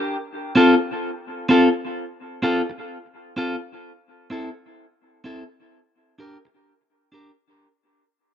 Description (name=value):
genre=reggae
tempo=64 BPM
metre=4/4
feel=swing 57% on 16ths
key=unclear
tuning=A4 = 439 Hz
part: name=clean electric guitar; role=accompaniment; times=0.6-7.3 s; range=C4 to Bb4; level=-19 LUFS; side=left 1 dB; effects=dub echo
room=moderate spring reverb, RT60 1.4 s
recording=none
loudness=-18 LUFS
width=side -10 dB against mid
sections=0.0-7.6 A section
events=fade-out 0.0-7.6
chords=0.1 Csus4; 3.8 C6; 5.7 Bb6